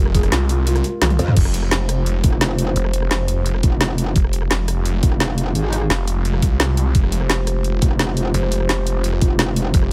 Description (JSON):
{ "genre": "dark technical drum and bass", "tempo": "172 BPM", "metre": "4/4", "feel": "straight", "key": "F minor", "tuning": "A4 = 441 Hz", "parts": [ { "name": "dark analog pad", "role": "sustained chords", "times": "0.0-9.9 s", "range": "Ab3 to F5", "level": "-30 LUFS", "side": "equal", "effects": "subtle chorus, sidechain pumping" }, { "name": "felt-muted upright piano", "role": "arpeggios", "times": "0.0-1.3 s", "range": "F4 to Ab4", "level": "-29 LUFS", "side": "equal", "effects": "sidechain pumping, low-pass filter, digital delay" }, { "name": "snarling distorted saw bass", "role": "bass", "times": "0.0-9.9 s", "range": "F1 to C2", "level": "-22 LUFS", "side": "equal", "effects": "distortion, tube saturation" }, { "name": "drum and bass drum kit", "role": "drums", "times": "0.1-9.9 s", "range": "crash cymbal, hi-hat, rim click, snare drum, toms", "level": "-24 LUFS", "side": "equal", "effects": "overdrive" }, { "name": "electronic kick drum", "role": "drums", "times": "0.1-9.8 s", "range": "none", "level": "-19 LUFS", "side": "equal", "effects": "overdrive" }, { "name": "metallic wobble bass", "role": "bass", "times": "1.2-9.7 s", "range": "F1 to F2", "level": "-22 LUFS", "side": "equal", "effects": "distortion, chorus" } ], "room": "little or no reverb", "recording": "none", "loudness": "-18 LUFS", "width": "mono", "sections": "0.0-1.4 A section; 1.4-9.9 A section", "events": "drop 0.0-1.4, 1.4-9.9; drum fill 1.0-1.4", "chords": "0.0 Fmadd9" }